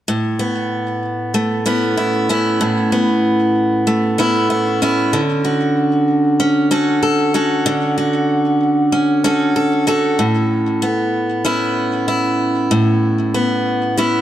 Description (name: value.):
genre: folktronica.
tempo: 95 BPM.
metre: 4/4.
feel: straight.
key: A major.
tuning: A4 = 440 Hz.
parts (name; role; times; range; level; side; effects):
picked steel-string acoustic guitar; solo; 0.1-14.2 s; A2 to A4; -14 LUFS; equal; digital delay.
room: moderate echo chamber reverb, RT60 2.1 s.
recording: dark, warm production.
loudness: -14 LUFS.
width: side -12 dB against mid.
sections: 0.1-10.2 A section; 10.2-14.2 B section.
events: none.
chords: 0.1 Aadd9; 5.1 Dmaj7; 10.2 Aadd9.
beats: | 0.08 0.71 1.34 1.97 | 2.61 3.24 3.87 4.50 | 5.13 5.76 6.40 7.03 | 7.66 8.29 8.92 9.55 | 10.19 10.82 11.45 12.08 | 12.71 13.34 13.97.